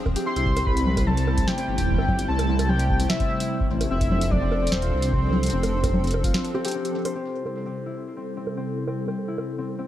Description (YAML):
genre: IDM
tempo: 148 BPM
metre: 4/4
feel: straight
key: C major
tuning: A4 = 440 Hz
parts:
  - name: hollow soft pad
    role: sustained chords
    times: 0.0-9.9 s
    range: C3 to A4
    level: -30 LUFS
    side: right 1 dB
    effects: ensemble chorus
  - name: concert harp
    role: arpeggios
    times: 0.0-9.9 s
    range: C4 to C5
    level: -31 LUFS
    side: left 5 dB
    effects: low-pass filter, dub echo
  - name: booming analog drum machine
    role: drums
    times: 0.1-9.5 s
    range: bongos, congas, hi-hat, snare drum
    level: -28 LUFS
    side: equal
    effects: low-pass filter on cymbals, studio reverb, low-pass filter on hats, low-pass filter on perc, low-pass filter on snare, tape echo
  - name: electronic kick drum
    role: drums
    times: 0.1-6.3 s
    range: none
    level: -26 LUFS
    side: equal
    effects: studio reverb
  - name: warbly nostalgic lead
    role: melody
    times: 0.3-6.7 s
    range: C5 to C6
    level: -29 LUFS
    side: equal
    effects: analog chorus, analog delay
  - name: dark detuned saw bass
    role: bass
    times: 0.4-6.3 s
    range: F1 to C2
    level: -24 LUFS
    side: equal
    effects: none
room: light reverb, digital ambience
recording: echo-heavy mix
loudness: -21 LUFS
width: side -12 dB against mid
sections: 0.0-7.2 A section; 7.2-9.9 B section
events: break 6.3-7.2; filter sweep on drum 7.2-9.9; filter sweep on analog synth pad 7.2-9.9; filter sweep on harp 7.2-9.9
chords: 0.0 Fm6; 0.7 C6; 3.9 F6; 7.2 C6